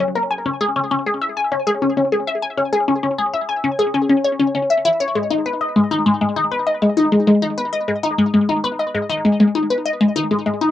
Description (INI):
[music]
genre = ambient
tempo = 99 BPM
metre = 4/4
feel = straight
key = G# minor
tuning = A4 = 440 Hz
[part]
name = resonant blip pluck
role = solo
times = 0.0-10.7 s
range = G#3 to G#5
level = -16 LUFS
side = left 2 dB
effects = phaser, vintage 12-bit sampler grit, cassette tape, analog delay
[sound]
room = wet booth ambience, RT60 0.2 s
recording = home recording on cassette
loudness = -16 LUFS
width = side -12 dB against mid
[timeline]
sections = 0.0-10.7 A section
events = none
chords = none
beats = | 0.30 0.91 1.52 2.12 | 2.73 3.33 3.94 4.55 | 5.15 5.76 6.37 6.97 | 7.58 8.18 8.79 9.40 | 10.00 10.61